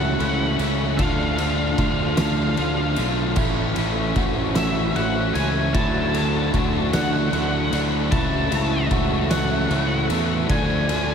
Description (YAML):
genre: post-rock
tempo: 50 BPM (dotted quarters)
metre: 6/8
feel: straight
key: A major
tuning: A4 = 440 Hz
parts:
  - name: octave-fuzz lead guitar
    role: melody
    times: 0.0-11.1 s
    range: E5 to A5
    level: -28 LUFS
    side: left 1 dB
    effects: distortion, ping-pong delay
  - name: dark symphonic string section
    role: sustained chords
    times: 0.0-11.1 s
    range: C#4 to C#6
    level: -34 LUFS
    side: left 3 dB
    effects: none
  - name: barky tine electric piano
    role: arpeggios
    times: 0.0-11.1 s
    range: D4 to F#4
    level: -32 LUFS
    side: right 3 dB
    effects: overdrive, wide subtle chorus, ping-pong delay
  - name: biting overdriven guitar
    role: riff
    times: 0.0-11.1 s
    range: A2 to F4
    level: -27 LUFS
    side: left 9 dB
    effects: spring reverb
  - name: overdriven electric guitar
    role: riff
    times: 0.0-11.1 s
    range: A2 to A4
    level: -26 LUFS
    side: right 8 dB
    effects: analog chorus
  - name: growling fingered electric bass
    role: bass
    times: 0.0-11.1 s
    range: A1 to E2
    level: -25 LUFS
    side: equal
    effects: overdrive
  - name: oversized low-tuned drum kit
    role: drums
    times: 0.2-11.1 s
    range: crash cymbal, kick drum, ride cymbal, snare drum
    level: -26 LUFS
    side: left 1 dB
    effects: none
room: moderate huge ambient reverb, RT60 8.4 s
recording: dreamy mix soaked in reverb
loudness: -19 LUFS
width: side -7 dB against mid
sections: 0.0-11.1 A section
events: none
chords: 0.0 A/C#; 1.0 Dm; 3.4 A; 5.7 Dmaj7; 8.1 A/C#; 10.5 Dm